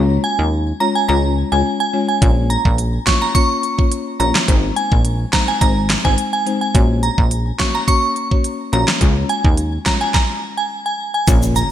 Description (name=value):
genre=dancehall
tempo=106 BPM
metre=4/4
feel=straight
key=unclear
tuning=A4 = 440 Hz
part: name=buzzing marimba with medium mallets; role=accompaniment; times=0.0-11.7 s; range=Ab3 to Db5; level=-22 LUFS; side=left 5 dB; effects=none
part: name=plucky analog bass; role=bass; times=0.0-11.6 s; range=Ab1 to Eb2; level=-18 LUFS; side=equal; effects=none
part: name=glassy synth bell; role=melody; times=0.2-11.7 s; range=Ab5 to Db6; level=-20 LUFS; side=right 2 dB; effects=chorus, ping-pong delay
part: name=pop drum kit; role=drums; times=2.2-11.7 s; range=hi-hat, kick drum, snare drum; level=-16 LUFS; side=equal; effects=gated reverb
part: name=tube shaker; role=percussion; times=11.3-11.7 s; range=none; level=-27 LUFS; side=left 2 dB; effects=none
part: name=impact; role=sound effects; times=11.4-11.7 s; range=none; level=-22 LUFS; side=right 1 dB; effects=none
room=light reverb, digital ambience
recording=bright 1980s-style digital production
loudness=-14 LUFS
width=side -11 dB against mid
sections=0.0-11.3 A section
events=stop 10.1-11.3; impact 11.3-11.7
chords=0.0 Db; 2.2 Bbm; 4.5 Ab; 6.7 Gb/Bb; 9.0 Db